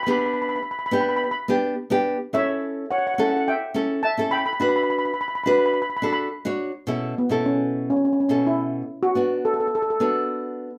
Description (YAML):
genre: calypso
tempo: 106 BPM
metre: 4/4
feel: straight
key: unclear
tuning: A4 = 440 Hz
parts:
  - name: steel pan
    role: melody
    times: 0.0-10.8 s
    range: B3 to B5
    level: -26 LUFS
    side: equal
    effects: none
  - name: nylon-string guitar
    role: accompaniment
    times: 0.1-10.7 s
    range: B2 to C#5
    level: -26 LUFS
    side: equal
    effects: none
room: wet small room reverb, RT60 0.5 s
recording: none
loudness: -23 LUFS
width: mono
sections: 0.0-6.9 A section; 6.9-10.8 B section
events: none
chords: 0.1 G/B; 2.3 A7; 4.6 Bm; 6.9 A/B; 9.2 Bm7